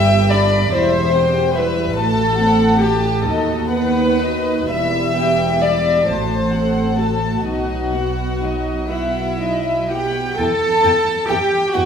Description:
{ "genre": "classical, slow romantic movement for string orchestra", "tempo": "39-49 BPM (dotted quarters)", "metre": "6/8", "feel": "rubato", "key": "E minor", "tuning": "A4 = 445 Hz", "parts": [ { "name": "warm symphonic violin section", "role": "melody", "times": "0.0-11.8 s", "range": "D#5 to B5", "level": "-26 LUFS", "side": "left 4 dB", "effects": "none" }, { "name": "warm symphonic violin section", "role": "second line", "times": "0.0-11.9 s", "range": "F#4 to A5", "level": "-19 LUFS", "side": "left 2 dB", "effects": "none" }, { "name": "dark studio viola section", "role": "accompaniment", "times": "0.0-11.8 s", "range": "F#3 to A4", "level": "-24 LUFS", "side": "right 3 dB", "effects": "none" }, { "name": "rich symphonic double bass section", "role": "bass", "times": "0.0-11.8 s", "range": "E1 to E2", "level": "-23 LUFS", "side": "right 1 dB", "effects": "none" }, { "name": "warm symphonic cello section", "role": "bass", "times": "0.0-11.9 s", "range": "D#2 to A4", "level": "-21 LUFS", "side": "right 1 dB", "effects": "none" } ], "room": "wet recital hall reverb, RT60 1.4 s", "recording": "recorded in a church or concert hall", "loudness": "-15 LUFS", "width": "side -7 dB against mid", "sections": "0.0-10.4 A section; 10.4-11.9 B section", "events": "none", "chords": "0.0 G; 0.7 C/E; 2.0 F#dim/A; 3.2 B/D#; 4.7 Em; 6.1 F#dim/A; 7.5 B; 10.4 Em" }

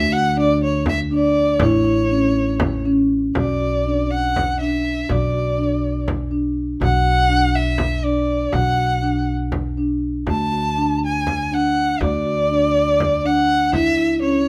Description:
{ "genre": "contemporary instrumental, chamber music in an uneven meter", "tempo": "243 BPM (eighths)", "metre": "7/8", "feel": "straight", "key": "B minor", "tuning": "A4 = 440 Hz", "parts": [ { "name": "warm violin", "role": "melody", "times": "0.0-14.5 s", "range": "C#5 to A5", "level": "-23 LUFS", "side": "equal", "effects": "none" }, { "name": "upright bass", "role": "bass", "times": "0.0-14.5 s", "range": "A1 to D2", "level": "-26 LUFS", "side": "equal", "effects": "none" }, { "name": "marimba with soft mallets", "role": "arpeggios", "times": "0.1-14.5 s", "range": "C#4 to F#4", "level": "-23 LUFS", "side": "equal", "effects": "none" }, { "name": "frame drum", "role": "percussion", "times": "0.6-14.0 s", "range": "none", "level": "-27 LUFS", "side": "equal", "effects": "none" } ], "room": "light reverb", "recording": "none", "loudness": "-19 LUFS", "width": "mono", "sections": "0.0-3.4 A section; 3.4-14.5 B section", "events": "none", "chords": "0.0 N.C.; 1.6 A; 3.4 Bm; 10.3 D; 13.7 C#m" }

